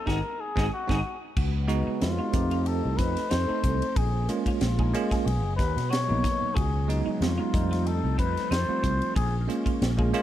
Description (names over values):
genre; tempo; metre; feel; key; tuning
electric jazz fusion; 92 BPM; 4/4; swing 54% on 16ths; unclear; A4 = 442 Hz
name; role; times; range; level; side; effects
trumpet with cup mute; melody; 0.0-9.4 s; F4 to Db5; -32 LUFS; left 4 dB; none
bell-like tine electric piano; accompaniment; 0.1-10.2 s; Gb3 to A4; -30 LUFS; right 4 dB; medium stereo tremolo
semi-hollow electric guitar; stabs; 0.1-10.2 s; C4 to Ab4; -38 LUFS; equal; ensemble chorus
sustaining fretless electric bass; bass; 0.1-10.1 s; Gb1 to Cb3; -27 LUFS; equal; analog chorus
crisp fusion drum kit; drums; 0.1-10.2 s; crash cymbal, hi-hat, kick drum, ride cymbal, snare drum; -30 LUFS; equal; none
phased string machine; sustained chords; 1.4-10.2 s; Cb3 to A4; -37 LUFS; equal; ensemble chorus, phaser
room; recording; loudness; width
light reverb; dark, warm production; -24 LUFS; side -12 dB against mid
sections
0.0-1.4 A section; 1.4-10.2 B section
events
band accent 0.0-1.4; drum fill 0.7-1.4; muted trumpet solo 1.4-10.2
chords
0.1 Ab7; 1.4 Db7sus4; 2.3 F7; 4.0 Bbm7; 5.3 Abm9; 6.6 Db7sus4; 7.5 F7; 9.2 Bbm7